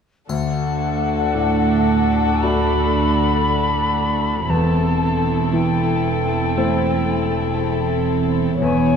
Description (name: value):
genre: cinematic, emotional film score for orchestra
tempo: 58 BPM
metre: 4/4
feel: rubato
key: unclear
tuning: A4 = 441 Hz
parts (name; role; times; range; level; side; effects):
- dark studio violin section; melody; 0.3-9.0 s; A4 to C#5; -26 LUFS; left 8 dB; none
- silver concert flute; second line; 0.3-9.0 s; F#5 to B5; -24 LUFS; left 3 dB; none
- warm studio violin section; second line; 0.3-9.0 s; E4 to F#4; -30 LUFS; left 4 dB; none
- bright grand piano; accompaniment; 0.3-9.0 s; D2 to D5; -23 LUFS; left 3 dB; none
- warm studio viola section; accompaniment; 0.3-9.0 s; B3 to D4; -25 LUFS; right 1 dB; none
- dark studio cello section; bass; 0.3-9.0 s; D2 to E2; -24 LUFS; right 5 dB; none
- dark studio double bass section; bass; 0.3-9.0 s; E1 to D2; -24 LUFS; right 5 dB; none
- triangle; percussion; 0.3-2.4 s; none; -42 LUFS; left 7 dB; none
room: moderate scoring stage reverb, RT60 1.9 s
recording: dark, warm production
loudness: -16 LUFS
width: side -7 dB against mid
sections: 0.3-9.0 A section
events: none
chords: 0.3 D; 4.5 C6/E